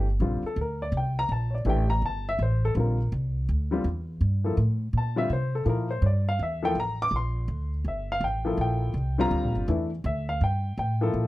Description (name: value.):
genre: modal jazz.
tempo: 165 BPM.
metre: 4/4.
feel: swing 65% on 8ths.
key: G dorian.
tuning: A4 = 440 Hz.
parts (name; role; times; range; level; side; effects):
warm baby grand piano; accompaniment; 0.0-11.3 s; D3 to D6; -28 LUFS; left 2 dB; none.
upright bass; bass; 0.0-11.3 s; G1 to C3; -26 LUFS; equal; none.
room: little or no reverb.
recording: close, detailed microphones.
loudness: -24 LUFS.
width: side -17 dB against mid.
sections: 0.0-11.3 A section.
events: none.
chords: 0.0 Gm69.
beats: 0.20 0.56 0.93 | 1.29 1.66 2.02 2.38 | 2.75 3.11 3.48 3.84 | 4.21 4.57 4.94 5.30 | 5.66 6.03 6.39 6.76 | 7.12 7.49 7.85 8.21 | 8.58 8.94 9.31 9.67 | 10.04 10.40 10.77 11.13.